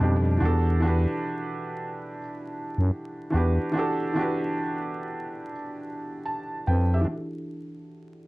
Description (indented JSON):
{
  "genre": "lo-fi hip hop",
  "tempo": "72 BPM",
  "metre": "4/4",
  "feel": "swing 65% on 16ths",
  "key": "E minor",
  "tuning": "A4 = 440 Hz",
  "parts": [
    { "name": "felt-muted upright piano", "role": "accompaniment", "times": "0.0-8.3 s", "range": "B2 to A5", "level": "-28 LUFS", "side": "right 1 dB", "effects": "low-pass filter" },
    { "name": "growling FM bass", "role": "bass", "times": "0.0-7.1 s", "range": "E2 to F#2", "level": "-22 LUFS", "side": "equal", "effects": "none" }
  ],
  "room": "moderate studio reverb, RT60 0.6 s",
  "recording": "dark, warm production, vinyl crackle",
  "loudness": "-24 LUFS",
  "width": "side -21 dB against mid",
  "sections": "0.0-7.1 A section; 7.1-8.3 B section",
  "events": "filter sweep on felt piano 7.1-8.3",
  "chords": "0.4 Em11",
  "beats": "| 0.42 1.25 2.08 2.92 | 3.75 4.58 5.42 6.25 | 7.08 7.92"
}